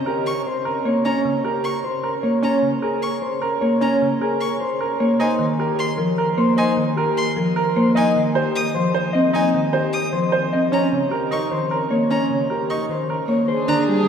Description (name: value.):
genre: classical, minimalist pattern music.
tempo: 304 BPM (eighths).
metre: 7/8.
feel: straight.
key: Bb dorian.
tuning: A4 = 440 Hz.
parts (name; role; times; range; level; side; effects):
buzzing marimba with soft mallets; accompaniment; 0.0-14.1 s; Db3 to C4; -22 LUFS; equal; none.
mellow electric guitar; melody; 0.1-14.1 s; G4 to Eb5; -23 LUFS; left 4 dB; none.
bright grand piano; arpeggios; 0.1-13.9 s; Db4 to C5; -23 LUFS; right 4 dB; none.
bright violin; arpeggios; 0.3-13.8 s; Ab5 to Eb6; -29 LUFS; left 2 dB; none.
bright alto flute; second line; 13.5-14.1 s; Ab4; -25 LUFS; right 5 dB; none.
rich symphonic string section; sustained chords; 13.5-14.1 s; D4 to Ab4; -27 LUFS; left 1 dB; none.
room: wet cathedral reverb, RT60 6.0 s.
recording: recorded in a church or concert hall.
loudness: -18 LUFS.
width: side -7 dB against mid.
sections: 0.0-13.5 A section.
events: none.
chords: 0.0 Bbm69/Db; 5.2 Abadd9 (rootless); 8.0 F7(no3); 10.7 Eb5; 13.5 Fm69 (rootless).